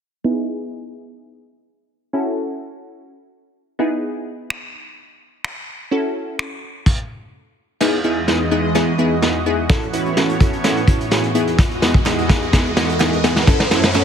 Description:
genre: dance-pop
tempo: 127 BPM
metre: 4/4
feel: straight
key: E major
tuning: A4 = 440 Hz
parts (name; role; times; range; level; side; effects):
- wavetable chord stab; accompaniment; 0.2-14.0 s; B3 to B4; -20 LUFS; equal; sidechain pumping, low-pass filter
- vintage brush drum kit; drums; 4.5-14.0 s; crash cymbal, finger snaps, hi-hat, kick drum, snare drum; -18 LUFS; equal; soft clipping on snare
- lush unison pad; sustained chords; 7.8-14.0 s; E2 to E5; -22 LUFS; right 1 dB; chorus, sidechain pumping
- riser; sound effects; 10.6-14.0 s; none; -27 LUFS; equal; none
- group handclap; percussion; 12.1-14.0 s; none; -32 LUFS; right 14 dB; none
room: light reverb, small room ambience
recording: dense, heavily limited modern master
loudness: -16 LUFS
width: side -8 dB against mid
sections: 0.2-7.8 A section; 7.8-14.0 B section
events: filter sweep on synth stab 0.2-7.8; build-up 7.8-14.0; drum fill 7.8-14.0; riser 10.6-14.0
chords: 0.2 Emaj7; 2.1 A6; 3.8 Emaj7; 5.9 F#m7; 7.8 Emaj7; 9.7 A6; 11.3 Emaj7; 13.5 F#m7

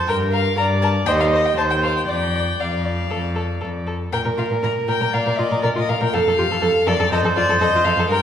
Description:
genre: quick classical-period movement for string quartet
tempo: 120 BPM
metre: 4/4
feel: rubato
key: unclear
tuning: A4 = 438 Hz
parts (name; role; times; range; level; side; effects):
- rich violin; melody; 0.0-8.2 s; D5 to Bb5; -24 LUFS; left 5 dB; none
- warm viola; accompaniment; 0.0-8.2 s; G4 to Eb5; -22 LUFS; right 2 dB; none
- rich cello; bass; 0.0-8.1 s; Eb2 to Bb2; -22 LUFS; equal; none
- dark violin; second line; 0.1-8.2 s; F4 to D5; -25 LUFS; left 2 dB; none
room: wet recital hall reverb, RT60 1.4 s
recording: recorded in a church or concert hall, vinyl crackle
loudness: -17 LUFS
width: side -9 dB against mid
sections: 0.0-8.2 A section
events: none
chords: 0.1 Gm; 1.1 Cm/Eb; 2.1 Dmadd11/F; 4.1 Bb; 6.1 F

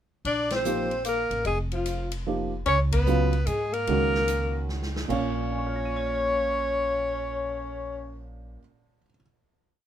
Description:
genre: modal jazz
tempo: 149 BPM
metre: 3/4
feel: swing 65% on 8ths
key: Bb phrygian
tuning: A4 = 441 Hz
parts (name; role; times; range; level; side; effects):
- upright bass; bass; 0.2-8.6 s; F1 to Ab2; -30 LUFS; equal; none
- bright alto saxophone; melody; 0.3-8.3 s; F4 to D5; -28 LUFS; equal; none
- clear tenor saxophone; second line; 0.3-8.3 s; F3 to D4; -32 LUFS; left 7 dB; none
- swinging big-band drum kit; drums; 0.3-7.4 s; crash cymbal, cymbal swell, hi-hat, kick drum, ride cymbal, snare drum; -37 LUFS; equal; none
- warm upright piano; accompaniment; 0.7-9.2 s; Bb2 to Ab7; -30 LUFS; right 5 dB; none
room: light reverb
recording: minimal, uncompressed stereo recording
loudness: -24 LUFS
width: side -10 dB against mid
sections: 0.3-5.1 A section; 5.1-7.5 final chord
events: band accent 0.5, 2.9; drum fill 4.7-5.1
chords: 0.3 Bbsus24; 2.7 Db13sus4; 5.1 Bbm

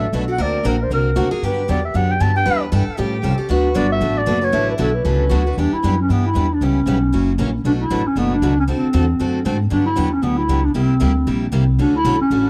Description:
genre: acoustic string swing (jazz manouche)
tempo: 232 BPM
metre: 4/4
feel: swing 57% on 8ths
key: D major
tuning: A4 = 437 Hz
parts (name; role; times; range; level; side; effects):
- breathy clarinet; melody; 0.0-12.5 s; B3 to A5; -22 LUFS; equal; tape echo
- picked steel-string acoustic guitar; second line; 0.0-5.5 s; C#4 to B4; -27 LUFS; equal; none
- picked steel-string acoustic guitar; accompaniment; 0.0-12.5 s; B2 to B4; -29 LUFS; equal; none
- picked steel-string acoustic guitar; accompaniment; 0.0-12.5 s; B2 to B4; -28 LUFS; equal; none
- upright bass; bass; 0.0-12.5 s; F#1 to A2; -22 LUFS; equal; none
room: studio reverb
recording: dry, close 1970s-style studio recording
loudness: -18 LUFS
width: mono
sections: 0.0-5.6 A section; 5.6-12.5 B section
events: none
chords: 0.4 Daug7; 1.4 Gmaj7; 2.5 Em7; 3.0 A7alt; 3.5 D69; 5.6 Em9; 6.6 C#m7b5; 7.1 F#7; 7.6 Bm11; 8.7 D7; 9.7 Gmaj7; 10.8 C9; 11.8 Dmaj7

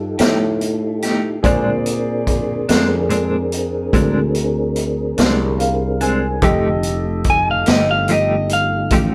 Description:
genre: slow blues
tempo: 48 BPM (dotted quarters)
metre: 12/8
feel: straight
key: unclear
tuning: A4 = 440 Hz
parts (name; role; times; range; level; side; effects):
- clean electric guitar; melody; 0.0-9.1 s; Eb5 to Ab5; -19 LUFS; equal; none
- clear grand piano; accompaniment; 0.0-9.1 s; G4 to Ab5; -28 LUFS; equal; none
- mellow tonewheel organ; sustained chords; 0.0-9.1 s; A3 to Bb4; -26 LUFS; equal; slow rotary speaker, chorus vibrato
- sustaining fretless electric bass; bass; 0.0-9.1 s; F1 to Bb2; -23 LUFS; equal; none
- clean electric guitar; accompaniment; 0.2-9.1 s; Bb2 to G4; -23 LUFS; equal; tremolo
- raw garage drum kit; drums; 0.2-9.1 s; hi-hat, kick drum, snare drum; -22 LUFS; equal; none
room: moderate stone room reverb, RT60 1.0 s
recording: band playing live in one room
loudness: -17 LUFS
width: mono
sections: 0.0-9.1 A section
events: grand piano fill 5.2-6.4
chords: 0.0 F9; 1.4 Bb9; 6.4 F9

